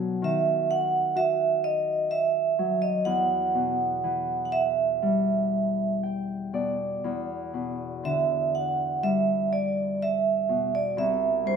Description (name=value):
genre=celtic folk, Celtic slow air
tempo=58-65 BPM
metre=4/4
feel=rubato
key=E minor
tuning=A4 = 440 Hz
part: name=Celtic harp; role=accompaniment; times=0.0-11.6 s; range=C2 to G5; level=-29 LUFS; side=left 5 dB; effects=none
part: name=vibraphone with hard mallets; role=melody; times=0.2-11.6 s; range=C5 to F#5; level=-24 LUFS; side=right 5 dB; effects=none
room=moderate recital hall reverb, RT60 1.6 s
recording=recorded in a church or concert hall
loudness=-23 LUFS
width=side -6 dB against mid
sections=0.0-7.0 A section; 7.0-11.6 A section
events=harp fill 5.5-7.0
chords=0.0 B (rootless); 3.1 Emadd9; 7.0 Em7; 11.0 C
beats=0.22 1.16 2.10 | 3.06 4.03 5.01 6.02 | 7.04 8.04 9.02 10.00 | 10.97